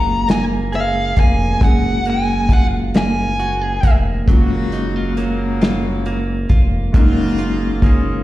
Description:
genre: slow six-eight R&B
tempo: 45 BPM (dotted quarters)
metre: 6/8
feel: straight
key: unclear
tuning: A4 = 440 Hz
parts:
  - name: dark smooth lead guitar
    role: melody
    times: 0.0-3.9 s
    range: F5 to Bb5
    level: -20 LUFS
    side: left 1 dB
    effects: overdrive, slapback echo
  - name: clean electric guitar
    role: second line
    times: 0.0-8.2 s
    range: Gb3 to Ab4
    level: -24 LUFS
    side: right 3 dB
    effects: slapback echo
  - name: tine electric piano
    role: accompaniment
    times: 0.0-8.2 s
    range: Ab3 to Ab4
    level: -23 LUFS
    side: left 1 dB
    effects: overdrive, fast stereo tremolo, slapback echo
  - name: round analog bass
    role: bass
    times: 0.0-8.2 s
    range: F1 to Gb1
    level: -20 LUFS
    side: equal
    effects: none
  - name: warm soul drum kit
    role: drums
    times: 0.3-8.0 s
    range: hi-hat, kick drum, snare drum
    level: -14 LUFS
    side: equal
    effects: none
  - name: clear horn section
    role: stabs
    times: 4.3-8.2 s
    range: Db3 to Ab4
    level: -27 LUFS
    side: left 2 dB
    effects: slapback echo
room: light reverb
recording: live gig heard through the venue's PA, recital hall reverb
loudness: -14 LUFS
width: side -16 dB against mid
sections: 0.0-4.3 A section; 4.3-8.2 B section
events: none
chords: 0.0 Gbmaj9

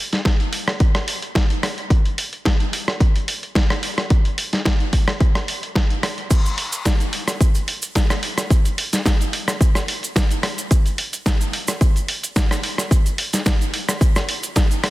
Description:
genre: nu-disco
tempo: 109 BPM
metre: 4/4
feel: swing 53% on 16ths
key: none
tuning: none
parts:
  - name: dusty soul sampler-style drum kit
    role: drums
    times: 0.1-14.9 s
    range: crash cymbal, hi-hat, rim click, snare drum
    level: -22 LUFS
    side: equal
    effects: none
  - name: electronic kick drum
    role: drums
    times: 0.3-14.7 s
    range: none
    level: -17 LUFS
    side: equal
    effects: overdrive
  - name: cabasa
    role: percussion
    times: 6.3-14.8 s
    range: none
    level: -30 LUFS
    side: right 3 dB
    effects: none
room: light reverb, digital ambience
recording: dense, heavily limited modern master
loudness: -17 LUFS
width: side -18 dB against mid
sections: 0.0-14.9 A section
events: none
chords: none

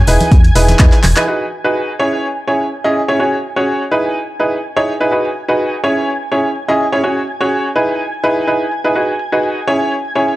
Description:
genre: piano house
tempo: 125 BPM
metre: 4/4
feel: swing 54% on 16ths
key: unclear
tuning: A4 = 440 Hz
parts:
  - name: analog string pad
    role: sustained chords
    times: 0.0-10.4 s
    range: G#5 to G#6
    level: -24 LUFS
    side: right 1 dB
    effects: ensemble chorus, sidechain pumping
  - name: organ-like FM bass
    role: bass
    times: 0.0-1.1 s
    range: E1 to E2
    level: -12 LUFS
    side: equal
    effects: sidechain pumping
  - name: bright upright piano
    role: riff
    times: 0.1-10.3 s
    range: C#4 to D#5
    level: -14 LUFS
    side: equal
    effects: sidechain pumping, low-pass filter, digital delay
  - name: breakbeat sampler-style drum kit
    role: drums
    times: 0.1-1.3 s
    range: hi-hat, snare drum, tambourine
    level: -29 LUFS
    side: left 1 dB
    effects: none
  - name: punchy analog drum machine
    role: drums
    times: 0.1-10.4 s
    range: crash cymbal, handclaps, hi-hat, tambourine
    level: -19 LUFS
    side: equal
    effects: overdrive, low-pass filter on snare, low-pass filter on hats, low-pass filter on perc, low-pass filter on cymbals
  - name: tambourine and congas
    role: percussion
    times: 0.1-1.2 s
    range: none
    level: -22 LUFS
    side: right 1 dB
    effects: none
  - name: electronic kick drum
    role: drums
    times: 0.3-0.9 s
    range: none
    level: -9 LUFS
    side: equal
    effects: overdrive
room: light reverb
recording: dark, warm production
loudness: -12 LUFS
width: side -16 dB against mid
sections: 0.0-1.3 A section; 1.3-10.4 B section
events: drum fill 1.0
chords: 0.1 Emaj7; 1.3 G#m7; 2.0 C#m; 3.2 F#sus2; 3.9 Emaj7; 5.1 G#m7; 5.8 C#m; 7.0 F#sus2; 7.8 Emaj7; 9.0 G#m7; 9.7 C#m

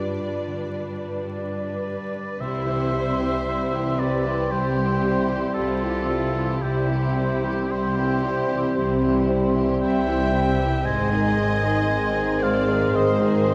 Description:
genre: cinematic, emotional film score for orchestra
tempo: 57 BPM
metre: 4/4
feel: rubato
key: C major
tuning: A4 = 439 Hz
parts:
  - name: clear symphonic violin section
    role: second line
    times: 0.0-13.5 s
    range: E4 to E5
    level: -34 LUFS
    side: equal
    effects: none
  - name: dark clarinet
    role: second line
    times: 0.0-13.5 s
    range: F4 to Ab4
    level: -35 LUFS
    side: equal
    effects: none
  - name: rich symphonic viola section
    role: accompaniment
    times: 0.0-13.5 s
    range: Eb3 to E4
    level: -32 LUFS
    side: equal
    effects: none
  - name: concert harp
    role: arpeggios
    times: 0.0-13.5 s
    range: G2 to C6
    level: -37 LUFS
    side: equal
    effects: none
  - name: warm symphonic cello section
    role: bass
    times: 0.0-13.5 s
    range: G2 to C3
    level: -30 LUFS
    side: equal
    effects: none
  - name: clear oboe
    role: second line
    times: 1.3-13.5 s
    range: G4 to Ab5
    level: -30 LUFS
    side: equal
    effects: none
  - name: clear symphonic violin section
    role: melody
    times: 2.4-13.5 s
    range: E4 to C5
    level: -37 LUFS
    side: equal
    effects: none
  - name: mellow small flute group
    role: second line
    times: 2.4-13.5 s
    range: C6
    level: -38 LUFS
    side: equal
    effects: none
  - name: mellow French horn section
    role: sustained chords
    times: 2.4-13.5 s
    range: Eb3 to C4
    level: -30 LUFS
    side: equal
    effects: none
  - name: rich symphonic double bass section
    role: bass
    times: 2.4-13.5 s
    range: Ab1 to C2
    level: -30 LUFS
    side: equal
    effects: none
room: wet scoring stage reverb, RT60 1.6 s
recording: vinyl crackle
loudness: -23 LUFS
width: mono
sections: 0.0-2.4 A section; 2.4-13.5 B section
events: none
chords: 0.0 G7; 2.4 C; 10.8 Ab

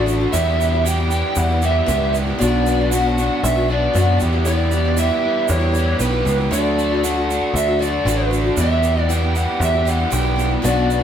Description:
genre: folk rock and heartland rock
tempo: 117 BPM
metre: 4/4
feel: straight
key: unclear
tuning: A4 = 435 Hz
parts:
  - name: lead guitar through a small cranked amp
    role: melody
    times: 0.0-11.0 s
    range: B4 to G5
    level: -22 LUFS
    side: right 1 dB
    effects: overdrive
  - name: picked steel-string acoustic guitar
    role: accompaniment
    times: 0.0-11.0 s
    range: B2 to G4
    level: -25 LUFS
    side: left 4 dB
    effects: none
  - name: accordion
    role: sustained chords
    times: 0.0-11.0 s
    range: A3 to B4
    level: -32 LUFS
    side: right 2 dB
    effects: light tremolo tuning
  - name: crunchy overdriven guitar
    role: riff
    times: 0.0-11.0 s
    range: E2 to G4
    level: -22 LUFS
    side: right 2 dB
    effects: none
  - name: picked electric bass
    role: bass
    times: 0.0-11.0 s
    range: A1 to F#2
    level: -20 LUFS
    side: equal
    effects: none
  - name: egg shaker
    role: percussion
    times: 0.1-11.0 s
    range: none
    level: -31 LUFS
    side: right 7 dB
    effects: none
room: moderate stone room reverb, RT60 0.9 s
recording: band playing live in one room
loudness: -16 LUFS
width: side -9 dB against mid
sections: 0.0-11.0 A section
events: none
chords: 0.3 Em; 2.4 Bm; 4.2 Em; 6.5 D; 8.6 Em

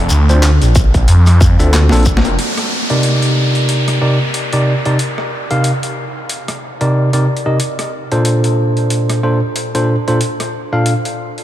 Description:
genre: glitch hop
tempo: 92 BPM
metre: 4/4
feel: swing 58% on 16ths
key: C dorian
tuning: A4 = 440 Hz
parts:
  - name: phased detuned saw bass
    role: bass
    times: 0.0-2.4 s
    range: F1 to F2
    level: -10 LUFS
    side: equal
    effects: phaser, overdrive
  - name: shekere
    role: percussion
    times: 0.1-2.4 s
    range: none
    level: -26 LUFS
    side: left 2 dB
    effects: none
  - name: bell-like tine electric piano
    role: stabs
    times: 0.3-10.9 s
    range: Bb2 to F5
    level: -15 LUFS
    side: equal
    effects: vintage 12-bit sampler grit, sidechain pumping, low-pass filter, ping-pong delay
  - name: boom bap sampler-style drum kit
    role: drums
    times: 0.3-11.4 s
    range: handclaps, hi-hat, rim click, snare drum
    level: -21 LUFS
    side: left 1 dB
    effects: overdrive, studio reverb
  - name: electronic kick drum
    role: drums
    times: 0.8-2.2 s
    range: none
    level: -13 LUFS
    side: equal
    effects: overdrive, studio reverb
  - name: downlifter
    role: sound effects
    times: 2.4-7.6 s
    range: none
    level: -23 LUFS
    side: equal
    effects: none
room: moderate cathedral reverb, RT60 6.4 s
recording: dreamy mix soaked in reverb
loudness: -11 LUFS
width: side -12 dB against mid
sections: 0.0-2.4 A section; 2.4-11.4 B section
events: drum fill 1.7-2.4; band accent 2.2-2.5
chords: 0.0 Bbmaj7; 2.4 Cm9; 7.6 Bbmaj7

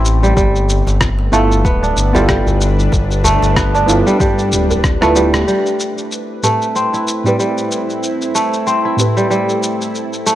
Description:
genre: organic downtempo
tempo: 94 BPM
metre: 4/4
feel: swing 57% on 16ths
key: A minor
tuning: A4 = 440 Hz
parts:
  - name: deep mellow chord stab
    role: accompaniment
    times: 0.0-10.4 s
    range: A2 to B4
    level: -19 LUFS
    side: right 2 dB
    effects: chorus, cassette tape, sidechain pumping, analog delay
  - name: bowed-like drone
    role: sustained chords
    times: 0.0-10.4 s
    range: G3 to B4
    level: -22 LUFS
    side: equal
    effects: built-in reverb, sidechain pumping
  - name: kora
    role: arpeggios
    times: 0.0-10.4 s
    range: G3 to E4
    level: -17 LUFS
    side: right 1 dB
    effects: low-pass filter, analog delay
  - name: smooth synth bass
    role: bass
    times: 0.0-5.4 s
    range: D1 to G2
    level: -16 LUFS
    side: equal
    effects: transformer saturation, sidechain pumping
  - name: electronic shaker and rim click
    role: drums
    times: 0.1-10.4 s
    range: none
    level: -20 LUFS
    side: left 1 dB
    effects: small room ambience
  - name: electronic kick drum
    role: drums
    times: 0.4-5.0 s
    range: none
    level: -18 LUFS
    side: equal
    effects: overdrive, small room ambience
  - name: djembe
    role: percussion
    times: 0.4-5.1 s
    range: none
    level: -24 LUFS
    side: right 1 dB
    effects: none
room: light reverb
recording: dry, gritty hardware recording, transformer saturation, cassette tape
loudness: -12 LUFS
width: side -13 dB against mid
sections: 0.0-5.5 A section; 5.5-10.4 B section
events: drum fill 4.8-5.5; band accent 5.3-5.6; filter sweep on kora 5.5-10.4; filter sweep on synth stab 5.5-10.4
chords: 0.4 G13; 5.5 Am7

